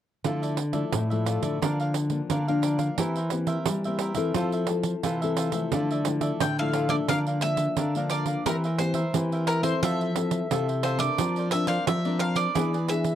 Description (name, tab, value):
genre	samba and choro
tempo	88 BPM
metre	4/4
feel	straight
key	D minor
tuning	A4 = 441 Hz
part	cavaquinho	accompaniment	0.2-12.9 s	D4 to F5	-33 LUFS	right 3 dB	none
part	nylon-string guitar	bass	0.2-13.1 s	A2 to G3	-28 LUFS	equal	none
part	pandeiro	percussion	0.2-13.2 s	none	-30 LUFS	right 9 dB	none
part	nylon-string guitar	accompaniment	0.3-13.2 s	A2 to Bb4	-30 LUFS	left 6 dB	none
part	bowl-back mandolin	melody	6.4-13.2 s	Bb4 to G5	-29 LUFS	right 1 dB	none
room	light reverb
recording	dry, close 1970s-style studio recording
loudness	-24 LUFS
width	side -10 dB against mid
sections	0.2-5.7 A section; 5.7-13.2 B section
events	none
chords	0.2 Dmadd9; 1.6 Bb/D; 3.0 C7/E; 4.4 Fmaj7; 5.7 Dmadd9; 7.1 Bb/D; 8.5 C7/E; 9.8 Fmaj7; 11.2 Bbadd9/F; 12.6 E7